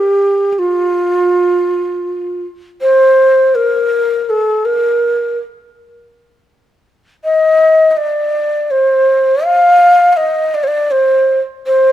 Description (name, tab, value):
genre	persian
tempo	81 BPM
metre	3/4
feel	straight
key	unclear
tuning	A4 = 444 Hz
part	breathy mellow ney	solo	0.0-11.9 s	F4 to F5	-10 LUFS	equal	none
room	moderate recital hall reverb, RT60 1.8 s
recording	close, detailed microphones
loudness	-10 LUFS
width	side -12 dB against mid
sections	0.0-11.9 A section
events	none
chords	none